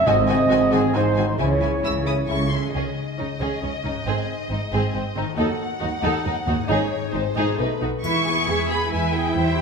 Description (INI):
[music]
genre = cinematic, heroic adventure film score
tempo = 136 BPM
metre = 3/4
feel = straight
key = C# harmonic minor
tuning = A4 = 440 Hz
[part]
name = mellow hollow concert flute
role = second line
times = 0.0-2.5 s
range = G#4 to D#5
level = -30 LUFS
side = left 1 dB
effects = none
[part]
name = warm clarinet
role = second line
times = 0.0-2.5 s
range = G#4 to D#5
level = -27 LUFS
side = equal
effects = none
[part]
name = warm French horn section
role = sustained chords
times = 0.0-7.7 s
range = D#3 to E4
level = -26 LUFS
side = left 2 dB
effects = none
[part]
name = concert harp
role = arpeggios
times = 0.0-9.6 s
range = G#2 to B4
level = -31 LUFS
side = left 9 dB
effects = none
[part]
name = dark trumpet section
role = stabs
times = 0.0-2.5 s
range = G#4 to D#5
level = -24 LUFS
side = right 4 dB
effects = none
[part]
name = rich symphonic violin section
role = melody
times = 0.1-9.6 s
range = B4 to E6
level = -28 LUFS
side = left 2 dB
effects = none
[part]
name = warm symphonic violin section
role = second line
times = 0.1-9.6 s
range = B#3 to G#5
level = -30 LUFS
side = left 1 dB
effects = none
[part]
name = rich symphonic viola section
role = accompaniment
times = 0.1-9.6 s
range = G3 to G#4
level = -30 LUFS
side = right 2 dB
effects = none
[part]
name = dark symphonic cello section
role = bass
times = 0.1-9.6 s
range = D#2 to G#4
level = -27 LUFS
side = right 2 dB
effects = none
[part]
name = warm studio double bass section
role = bass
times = 0.1-9.6 s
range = G#1 to E2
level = -28 LUFS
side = right 3 dB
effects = none
[part]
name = timpani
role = percussion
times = 0.1-0.7 s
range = G#2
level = -31 LUFS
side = left 1 dB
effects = none
[part]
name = triangle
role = percussion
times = 8.0-8.9 s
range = none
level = -42 LUFS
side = right 1 dB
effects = none
[sound]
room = wet recital hall reverb, RT60 1.5 s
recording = none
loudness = -20 LUFS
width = side -5 dB against mid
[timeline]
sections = 0.0-2.7 A section; 2.7-8.0 B section; 8.0-9.6 C section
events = none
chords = 0.1 G#7; 1.4 C#m; 2.7 C#sus2; 4.1 G#; 5.4 D#dim; 6.7 G#sus4; 7.1 G#; 7.6 B7; 8.0 E